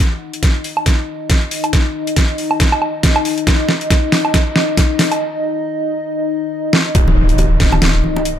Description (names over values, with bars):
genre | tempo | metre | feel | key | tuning
deep dubstep | 138 BPM | 4/4 | swing 57% on 16ths, half-time | unclear | A4 = 440 Hz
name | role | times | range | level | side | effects
dark analog pad | sustained chords | 0.0-8.4 s | Eb4 to Eb5 | -20 LUFS | left 2 dB | chorus
dubstep drum kit | drums | 0.3-8.4 s | hi-hat, snare drum, woodblock | -16 LUFS | right 1 dB | overdrive
electronic kick drum | drums | 0.4-7.7 s | none | -14 LUFS | equal | overdrive
soft dub sub bass | bass | 6.9-8.0 s | Eb1 | -15 LUFS | equal | none
bongos and congas | percussion | 7.0-8.2 s | none | -22 LUFS | equal | dub echo
impact | sound effects | 7.0-8.4 s | none | -20 LUFS | equal | none
room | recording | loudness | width
light reverb | none | -13 LUFS | side -10 dB against mid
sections
0.0-7.0 A section; 7.0-8.4 B section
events
build-up 0.0-7.0; drum fill 0.0-5.2, 6.7; break 5.2-7.0; drop 7.0-8.4; impact 7.0-8.4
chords
0.0 N.C.; 7.0 Eb5